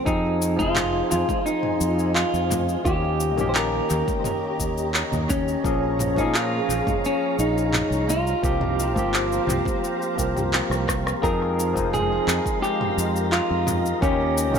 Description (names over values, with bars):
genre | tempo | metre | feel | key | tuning
sunset chillout | 86 BPM | 4/4 | straight | F minor | A4 = 440 Hz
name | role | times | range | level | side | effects
clean electric guitar | melody | 0.0-14.6 s | Db4 to C5 | -25 LUFS | left 1 dB | tape echo
barky tine electric piano | accompaniment | 0.0-14.6 s | Eb3 to Bb4 | -28 LUFS | equal | medium stereo tremolo, auto-pan, tape echo
soft string machine | sustained chords | 0.4-14.6 s | Ab3 to C6 | -30 LUFS | equal | ensemble chorus
fretless electric bass | bass | 0.1-14.6 s | F1 to Bb2 | -27 LUFS | equal | none
deep house drum kit | drums | 0.1-14.6 s | cabasa, handclaps, rim click, toms | -27 LUFS | equal | analog delay
electronic kick drum | drums | 0.1-14.2 s | none | -28 LUFS | equal | none
congas | percussion | 0.6-9.8 s | none | -36 LUFS | left 4 dB | none
wind-like tuned noise texture | texture | 11.7-14.6 s | Bb4 to Bb5 | -35 LUFS | left 2 dB | built-in reverb
room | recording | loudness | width
moderate echo chamber reverb, RT60 2.2 s | echo-heavy mix | -20 LUFS | side -7 dB against mid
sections
0.0-11.2 A section; 11.2-14.6 B section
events
drum fill 10.7-11.2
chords
0.1 Fm7; 2.9 Eb7; 5.6 Bbm7; 8.1 C7sus4; 11.2 Fm7; 14.0 Eb7